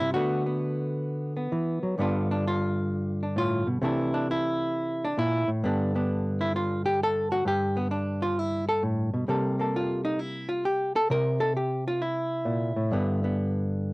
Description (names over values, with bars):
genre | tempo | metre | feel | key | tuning
solo jazz | 132 BPM | 4/4 | swing 68% on 8ths | G mixolydian | A4 = 441 Hz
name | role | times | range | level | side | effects
hollow-body jazz guitar | solo | 0.0-13.9 s | G2 to Bb4 | -25 LUFS | equal | cassette tape
room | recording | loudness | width
moderate booth ambience, RT60 0.2 s | home recording on cassette | -25 LUFS | side -23 dB against mid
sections
0.0-2.0 A section; 2.0-13.9 B section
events
hollow-body jazz guitar solo 2.0-13.9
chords
0.1 D69; 2.0 G9; 3.8 C13; 5.6 Gadd9; 9.3 C6; 12.9 G6